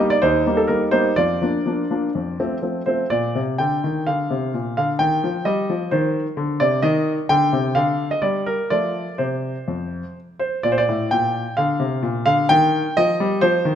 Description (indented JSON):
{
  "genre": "classical-period piano sonatina",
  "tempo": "122-134 BPM",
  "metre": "4/4",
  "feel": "rubato",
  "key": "Bb major",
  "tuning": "A4 = 440 Hz",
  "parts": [
    { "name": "clear grand piano", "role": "solo", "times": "0.0-13.8 s", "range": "Eb2 to G5", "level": "-18 LUFS", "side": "equal", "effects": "none" }
  ],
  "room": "moderate recital hall reverb, RT60 1.8 s",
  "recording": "minimal, uncompressed stereo recording",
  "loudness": "-18 LUFS",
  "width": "side -9 dB against mid",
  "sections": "0.0-3.1 A section; 3.1-13.8 B section",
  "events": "none",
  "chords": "0.0 Eb6; 1.2 Bb/F; 2.2 F; 3.1 Bb; 5.0 Cm/Eb; 6.8 Cmadd9; 7.8 Dmadd11; 8.7 F; 10.7 Bbmaj13/A; 11.6 Bb; 12.5 Cm/Eb"
}